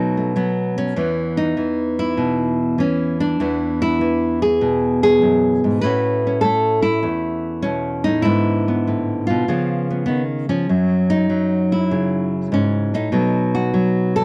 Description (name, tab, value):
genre	solo jazz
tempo	99 BPM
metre	4/4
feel	swing 69% on 8ths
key	E major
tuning	A4 = 440 Hz
part	nylon-string guitar	solo	0.0-14.2 s	E2 to B4	-19 LUFS	equal	none
room	light reverb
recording	worn, warbling old tape, cassette tape, warbly pitch drift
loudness	-19 LUFS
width	mono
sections	0.9-14.2 A section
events	none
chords	0.0 B7; 0.9 E5; 3.4 E7; 5.8 A6; 8.2 G#dim; 9.5 C#7; 10.7 F#7(no3); 13.1 B7